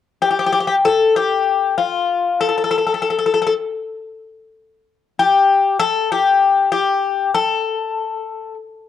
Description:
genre	greek folk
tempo	97 BPM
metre	4/4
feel	straight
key	unclear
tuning	A4 = 440 Hz
part	Greek bouzouki	solo	0.2-8.5 s	F4 to A4	-15 LUFS	left 5 dB	cassette tape
room	moderate spring reverb, RT60 1.1 s, small room ambience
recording	home recording on cassette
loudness	-15 LUFS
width	side -10 dB against mid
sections	0.0-8.9 A section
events	none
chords	none

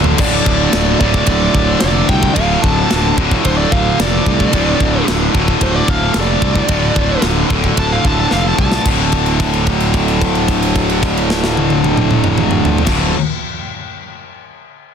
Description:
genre	heavy metal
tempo	111 BPM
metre	4/4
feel	straight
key	unclear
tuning	A4 = 440 Hz
part	heavy high-gain guitar	riff	0.0-13.1 s	D2 to D3	-18 LUFS	left 12 dB	distortion
part	tight distorted guitar	riff	0.0-13.1 s	D2 to D3	-19 LUFS	right 16 dB	distortion
part	fuzz fingered electric bass	bass	0.0-13.1 s	D1 to C2	-18 LUFS	equal	overdrive
part	tight metal drum kit	drums	0.0-13.0 s	crash cymbal, kick drum, ride cymbal, snare drum, toms	-17 LUFS	equal	soft clipping on kick
part	bluesy overdriven lead guitar	melody	0.2-8.9 s	C5 to A5	-20 LUFS	right 1 dB	distortion, ping-pong delay
room	light reverb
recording	dense, heavily limited modern master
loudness	-12 LUFS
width	side -7 dB against mid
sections	0.2-8.9 A section; 8.9-13.2 B section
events	drum fill 0.0, 8.3-8.9; lead electric guitar solo 0.2-8.9; held note 8.9-12.9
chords	0.2 D5

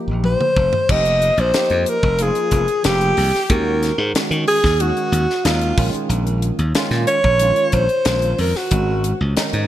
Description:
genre	electric jazz fusion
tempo	92 BPM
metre	4/4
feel	straight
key	F phrygian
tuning	A4 = 439 Hz
part	barky tine electric piano	accompaniment	0.0-9.7 s	Eb3 to G4	-26 LUFS	right 2 dB	ensemble chorus
part	glassy slap bass	bass	0.1-9.7 s	F1 to Eb3	-19 LUFS	equal	none
part	crisp fusion drum kit	drums	0.2-9.7 s	crash cymbal, hi-hat, kick drum, snare drum, toms	-22 LUFS	left 1 dB	none
part	warm alto saxophone	melody	0.3-9.2 s	F4 to Eb5	-18 LUFS	equal	none
room	moderate plate reverb, RT60 2.3 s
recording	bright 1980s-style digital production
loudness	-15 LUFS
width	side -12 dB against mid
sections	0.9-9.7 A section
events	drum fill 0.2-0.9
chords	0.0 F9sus4; 3.5 Ebm7; 5.8 Bbm9; 8.7 Ab5

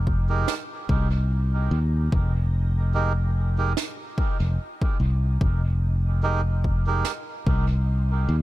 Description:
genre	ambient dub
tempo	73 BPM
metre	4/4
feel	swing 55% on 16ths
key	F minor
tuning	A4 = 439 Hz
part	granular cloud pad	sustained chords	0.0-8.4 s	F4 to C6	-46 LUFS	equal	built-in reverb
part	fingered electric bass	bass	0.0-8.4 s	F1 to Eb2	-22 LUFS	equal	none
part	electronic kick drum	drums	0.1-7.6 s	none	-25 LUFS	equal	overdrive
part	melodica	stabs	0.3-7.1 s	Ab3 to Bb4	-31 LUFS	right 5 dB	dub echo
part	snare drum	drums	0.5-7.2 s	none	-32 LUFS	right 8 dB	dub echo
room	small room reverb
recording	none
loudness	-21 LUFS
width	side -16 dB against mid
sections	0.0-8.4 A section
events	none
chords	0.0 Fm11

